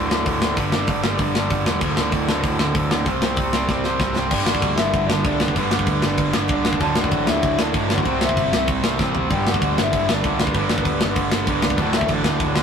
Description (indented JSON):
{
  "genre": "punk rock",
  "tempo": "193 BPM",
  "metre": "4/4",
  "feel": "straight",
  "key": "unclear",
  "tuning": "A4 = 440 Hz",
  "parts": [
    { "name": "cranked stack guitar", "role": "riff", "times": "0.0-12.6 s", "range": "D2 to C4", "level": "-27 LUFS", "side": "equal", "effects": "overdrive" },
    { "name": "crunchy overdriven guitar", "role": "riff", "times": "0.0-12.6 s", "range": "D2 to C4", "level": "-29 LUFS", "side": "left 3 dB", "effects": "none" },
    { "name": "distorted electric guitar", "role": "riff", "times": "0.0-12.6 s", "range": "D2 to C4", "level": "-24 LUFS", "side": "right 4 dB", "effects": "overdrive" },
    { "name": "overdriven picked electric bass", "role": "bass", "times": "0.0-12.6 s", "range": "D1 to D2", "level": "-28 LUFS", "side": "left 1 dB", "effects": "none" },
    { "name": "tight metal drum kit", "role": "drums", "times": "0.1-12.6 s", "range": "crash cymbal, hi-hat, kick drum, snare drum, toms", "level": "-22 LUFS", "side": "equal", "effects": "none" },
    { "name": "bluesy overdriven lead guitar", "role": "melody", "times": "4.0-12.6 s", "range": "B3 to A5", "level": "-25 LUFS", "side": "left 2 dB", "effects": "distortion, digital delay" }
  ],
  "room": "light reverb",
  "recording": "rough rehearsal-room recording, tube saturation",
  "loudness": "-18 LUFS",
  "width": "side -7 dB against mid",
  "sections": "0.0-4.3 A section; 4.3-12.6 B section",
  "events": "drum fill 3.7-4.3, 9.0-9.3",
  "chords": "0.0 D5; 0.6 G5; 1.8 D5; 3.1 C5; 4.3 G; 6.8 D; 8.1 C; 9.3 G; 11.8 D"
}